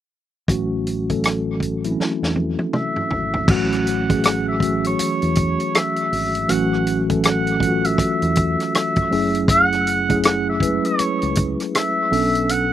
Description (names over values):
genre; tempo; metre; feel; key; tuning
R&B, neo-soul; 80 BPM; 4/4; swing 61% on 16ths; A major; A4 = 439 Hz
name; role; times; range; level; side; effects
mellow tine electric piano; accompaniment; 0.5-12.7 s; E3 to B4; -21 LUFS; equal; medium stereo tremolo, slapback echo
deep dub fingered electric bass; bass; 0.5-12.7 s; F#1 to E2; -27 LUFS; equal; none
warm soul drum kit; drums; 0.5-12.7 s; crash cymbal, hi-hat, kick drum, rim click, snare drum, toms; -21 LUFS; equal; none
warm oboe; melody; 2.8-12.7 s; C#5 to F#5; -22 LUFS; right 1 dB; slapback echo
room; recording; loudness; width
little or no reverb; recorded outdoors, with no room sound; -17 LUFS; side -11 dB against mid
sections
0.5-3.5 A section; 3.5-12.7 B section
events
drum fill 2.0-3.5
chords
0.5 A6; 9.1 F#m9; 12.1 Bm9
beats
| 0.48 1.23 1.98 2.73 | 3.48 4.23 4.98 5.73 | 6.48 7.23 7.98 8.73 | 9.48 10.23 10.98 11.73 | 12.48